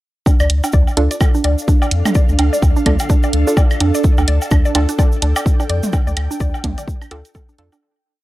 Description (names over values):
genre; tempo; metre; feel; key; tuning
minimal techno; 127 BPM; 4/4; swing 59% on 16ths; D minor; A4 = 440 Hz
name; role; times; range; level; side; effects
resonant blip pluck; riff; 0.3-7.8 s; D4 to D5; -23 LUFS; right 1 dB; chorus, sidechain pumping, tape echo
electronic kick drum; drums; 0.3-7.5 s; none; -14 LUFS; equal; studio reverb
electronic woodblock and toms; percussion; 0.3-7.8 s; none; -24 LUFS; right 1 dB; studio reverb, analog delay
tube shaker; percussion; 0.3-7.8 s; none; -31 LUFS; right 3 dB; none
ethereal airy pad; texture; 0.9-7.8 s; D4 to G5; -25 LUFS; right 3 dB; ensemble chorus, built-in reverb, phaser, sidechain pumping
rubbery square bass; bass; 0.4-7.7 s; D2 to F2; -16 LUFS; equal; sidechain pumping
electronic hi-hat; drums; 0.5-7.7 s; none; -20 LUFS; right 2 dB; studio reverb
filtered dub chord stab; stabs; 1.0-7.7 s; D4 to A4; -22 LUFS; right 2 dB; chorus, analog delay
room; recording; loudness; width
little or no reverb; dry, gritty hardware recording; -13 LUFS; side -17 dB against mid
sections
0.3-7.8 groove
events
fade-out 5.3-7.8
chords
0.3 Dm